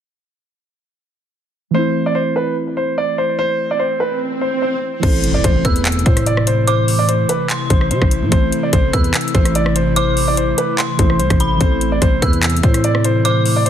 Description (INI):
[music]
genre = hip hop, trap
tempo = 146 BPM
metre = 4/4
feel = half-time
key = A minor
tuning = A4 = 440 Hz
[part]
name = dark concert grand piano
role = melody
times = 1.7-13.7 s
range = B4 to D5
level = -20 LUFS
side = right 1 dB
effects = ping-pong delay
[part]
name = muted felt-like synth keys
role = accompaniment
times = 1.7-13.7 s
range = E3 to A4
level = -23 LUFS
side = equal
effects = chorus
[part]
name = swell and impact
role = sound effects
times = 3.7-6.7 s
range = none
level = -25 LUFS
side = right 1 dB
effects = none
[part]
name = airy breathy pad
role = sustained chords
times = 5.0-13.7 s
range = C3 to E4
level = -23 LUFS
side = left 1 dB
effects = chorus
[part]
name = growling 808-style bass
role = bass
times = 5.0-13.7 s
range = A1 to C3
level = -18 LUFS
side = equal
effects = none
[part]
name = trap drum kit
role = drums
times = 5.0-13.7 s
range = crash cymbal, handclaps, hi-hat, kick drum, rim click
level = -17 LUFS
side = equal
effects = soft clipping on snare
[part]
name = dark detuned synth bell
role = second line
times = 5.6-13.7 s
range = B5 to E6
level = -24 LUFS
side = right 1 dB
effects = chorus, phaser, ping-pong delay
[sound]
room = little or no reverb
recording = dense, heavily limited modern master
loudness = -14 LUFS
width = side -9 dB against mid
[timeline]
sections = 1.7-5.0 A section; 5.0-13.7 B section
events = swell 3.7-5.0; impact 5.0-6.7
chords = 1.7 Am